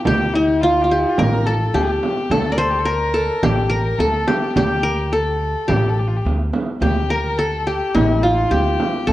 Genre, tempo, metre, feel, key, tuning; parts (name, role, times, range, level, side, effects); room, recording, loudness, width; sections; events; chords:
Arabic maqam ensemble; 106 BPM; 4/4; straight; A4 = 440 Hz
qanun; melody; 0.0-9.1 s; E4-50c to D5; -19 LUFS; equal
warm violin; second line; 0.0-9.1 s; Eb4+48c to Bb4; -25 LUFS; left 3 dB
frame drum; percussion; 0.0-9.1 s; -22 LUFS; right 2 dB
upright bass; bass; 0.1-9.1 s; A1 to D2; -22 LUFS; equal
moderate recital hall reverb, RT60 1.5 s; worn, warbling old tape, cassette tape, warbly pitch drift; -16 LUFS; side -15 dB against mid
0.0-9.1 A section